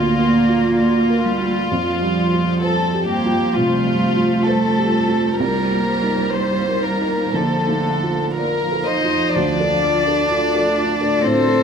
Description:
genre	neoclassical piano and strings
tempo	59-66 BPM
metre	4/4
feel	rubato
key	unclear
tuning	A4 = 441 Hz
part	rich chamber violin section	melody	0.0-11.6 s	F4 to Eb5	-20 LUFS	left 2 dB	none
part	warm cello	second line	0.0-11.6 s	D3 to Eb4	-20 LUFS	right 3 dB	none
part	felt-muted upright piano	accompaniment	0.0-11.6 s	Bb1 to D5	-22 LUFS	right 2 dB	none
part	granular cloud pad	sustained chords	0.0-11.6 s	F3 to F5	-26 LUFS	left 2 dB	built-in reverb
part	vibraphone with medium hard mallets	arpeggios	9.4-11.6 s	D4 to D5	-26 LUFS	right 2 dB	slapback echo
part	dark viola	accompaniment	11.2-11.6 s	A4	-23 LUFS	right 1 dB	none
room	light reverb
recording	close, detailed microphones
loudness	-16 LUFS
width	side -7 dB against mid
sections	0.0-9.4 A section; 9.4-11.6 B section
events	none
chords	0.0 Bb/D; 1.7 Fadd9; 5.4 Cm7; 7.4 Bbmaj7; 9.4 Dm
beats	0.78 | 1.69 2.62 3.55 4.47 | 5.40 6.37 7.36 8.38 | 9.37 10.31 11.24

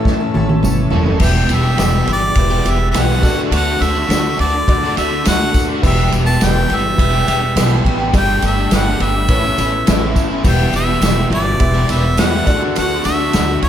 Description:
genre	folk rock and heartland rock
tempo	104 BPM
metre	4/4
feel	straight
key	E dorian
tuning	A4 = 440 Hz
part	clear concert grand piano	accompaniment	0.0-13.4 s	F#4 to E5	-28 LUFS	right 2 dB	wide subtle chorus
part	picked steel-string acoustic guitar	accompaniment	0.0-13.7 s	E2 to A4	-22 LUFS	left 4 dB	none
part	tonewheel organ	sustained chords	0.0-1.2, 10.5-13.7 s	F#3 to A4	-30 LUFS	equal	none
part	crunchy overdriven guitar	riff	0.0-13.7 s	E2 to A4	-22 LUFS	equal	ensemble chorus
part	upright bass	bass	0.1-13.7 s	E1 to E2	-18 LUFS	equal	none
part	unplugged drum kit	drums	0.1-13.7 s	crash cymbal, kick drum, ride cymbal, snare drum, toms	-18 LUFS	right 1 dB	none
part	tambourine	percussion	0.6-13.7 s	none	-33 LUFS	right 5 dB	none
part	clear harmonica	melody	1.2-13.7 s	D5 to A5	-20 LUFS	equal	analog delay
room	moderate lush hall reverb, RT60 2.2 s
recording	dreamy mix soaked in reverb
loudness	-12 LUFS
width	side -10 dB against mid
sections	0.0-1.2 A section; 1.2-13.7 B section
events	drum fill 0.1-1.2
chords	0.0 A; 1.2 Em; 3.2 D; 5.8 Em; 8.1 Gsus2; 9.3 Aadd9; 10.5 Em; 12.5 D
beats	0.06 0.63 | 1.21 1.79 2.37 2.94 | 3.52 4.10 4.68 5.26 | 5.83 6.41 6.99 7.57 | 8.14 8.72 9.30 9.88 | 10.45 11.03 11.61 12.19 | 12.76 13.34

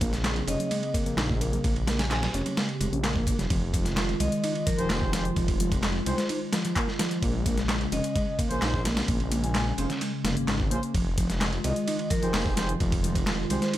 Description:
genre	breakbeat, breaks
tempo	129 BPM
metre	4/4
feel	straight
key	F minor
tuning	A4 = 438 Hz
part	warbly tape-like pad	sustained chords	0.0-13.8 s	Db3 to Ab4	-33 LUFS	equal	chorus, built-in reverb, sidechain pumping
part	picked electric bass	riff	0.0-13.8 s	F3 to Eb4	-32 LUFS	equal	overdrive, tape echo
part	detuned saw bass	bass	0.0-13.6 s	F1 to C2	-30 LUFS	equal	none
part	dusty soul sampler-style drum kit	drums	0.0-13.8 s	hi-hat, kick drum, ride cymbal, snare drum	-29 LUFS	equal	overdrive
part	punchy analog drum machine	drums	0.0-13.8 s	handclaps, hi-hat	-35 LUFS	left 1 dB	none
part	congas	percussion	0.0-3.5 s	none	-39 LUFS	right 4 dB	none
part	vibraphone with medium mallets	melody	0.5-13.7 s	Bb4 to Ab5	-35 LUFS	equal	old record sound, tape echo
part	warm brass ensemble	stabs	4.8-13.6 s	Db4 to C5	-36 LUFS	right 2 dB	tape echo
room	little or no reverb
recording	none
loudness	-24 LUFS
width	side -14 dB against mid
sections	0.0-3.5 A section; 3.5-13.8 B section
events	drop 3.5-13.8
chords	0.0 Bbm9; 3.5 Fm7; 7.2 Bbm9; 10.9 Fm7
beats	0.25 0.71 1.18 | 1.65 2.11 2.58 3.04 | 3.50 3.97 4.43 4.90 | 5.37 5.83 6.30 6.76 | 7.23 7.69 8.16 8.62 | 9.09 9.55 10.02 10.48 | 10.95 11.41 11.88 12.34 | 12.81 13.27 13.74

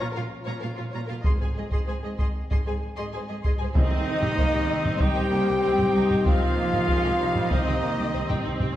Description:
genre	cinematic, epic orchestral film score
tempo	96 BPM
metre	4/4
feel	straight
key	C phrygian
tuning	A4 = 440 Hz
part	warm symphonic violin section	melody	0.0-8.7 s	Eb4 to C6	-38 LUFS	left 3 dB	none
part	warm symphonic violin section	second line	0.0-8.4 s	F4 to G5	-35 LUFS	left 1 dB	none
part	clear symphonic viola section	accompaniment	0.0-8.8 s	G3 to Ab4	-34 LUFS	right 2 dB	none
part	dark French horn section	sustained chords	0.0-8.5 s	Eb3 to G4	-30 LUFS	left 2 dB	none
part	rich symphonic cello section	bass	0.0-8.4 s	Ab2 to G3	-31 LUFS	right 1 dB	none
part	solo taiko drums	drums	1.2-8.8 s	none	-25 LUFS	equal	none
part	rich symphonic double bass section	bass	1.3-8.7 s	Ab1 to C2	-33 LUFS	right 2 dB	none
part	mellow flute section	second line	3.8-8.5 s	Eb5 to G5	-33 LUFS	right 1 dB	none
part	bright trombone section	sustained chords	3.8-8.7 s	Eb3 to C4	-36 LUFS	right 2 dB	none
part	warm woodwind section	sustained chords	3.8-8.7 s	Eb4 to Eb5	-35 LUFS	equal	none
part	clear trumpet	stabs	3.8-8.4 s	Eb4 to G4	-31 LUFS	equal	none
part	timpani	percussion	3.8-4.7 s	C3	-35 LUFS	equal	none
room	wet recital hall reverb, RT60 1.6 s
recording	heard from further back in the room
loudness	-22 LUFS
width	side -13 dB against mid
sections	0.0-3.8 A section; 3.8-8.8 B section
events	none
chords	0.0 Bbm; 1.3 Ab; 3.8 Cm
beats	0.01 0.64 | 1.26 1.89 2.51 3.14 | 3.76 4.39 5.01 5.64 | 6.26 6.89 7.51 8.13 | 8.76

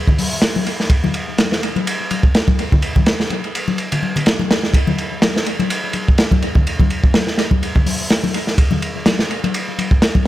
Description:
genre	breakbeat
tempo	125 BPM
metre	4/4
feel	swing 56% on 16ths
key	none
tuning	none
part	crunchy breakbeat drum kit	drums	0.1-10.3 s	hi-hat, kick drum, ride cymbal, snare drum	-15 LUFS	equal	dub echo
part	congas	percussion	0.1-10.2 s	none	-22 LUFS	left 4 dB	dub echo
room	little or no reverb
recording	echo-heavy mix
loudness	-14 LUFS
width	side -14 dB against mid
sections	0.0-10.3 A section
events	kick drops out 3.8-4.7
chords	none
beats	0.42 | 0.90 1.38 1.86 2.34 | 2.82 3.30 3.78 4.26 | 4.74 5.22 5.70 6.18 | 6.66 7.14 7.62 8.10 | 8.58 9.06 9.54 10.02

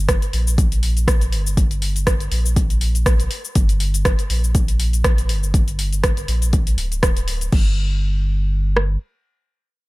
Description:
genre	afro house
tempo	121 BPM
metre	4/4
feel	swing 55% on 16ths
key	G minor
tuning	A4 = 436 Hz
part	warm sub bass	bass	0.0-9.0 s	D1 to Bb1	-20 LUFS	equal	tube saturation, sidechain pumping
part	deep house drum kit	drums	0.1-8.9 s	kick drum, rim click	-18 LUFS	equal	overdrive
part	deep house drum kit	drums	0.1-7.6 s	cabasa, crash cymbal, hi-hat, rim click	-24 LUFS	equal	overdrive
room	little or no reverb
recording	none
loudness	-16 LUFS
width	side -21 dB against mid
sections	0.0-7.5 A section; 7.5-9.9 B section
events	drop 0.0-7.5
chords	none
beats	0.09 0.58 1.08 | 1.57 2.07 2.57 3.06 | 3.56 4.05 4.55 5.05 | 5.54 6.04 6.53 7.03 | 7.53 8.02 8.52

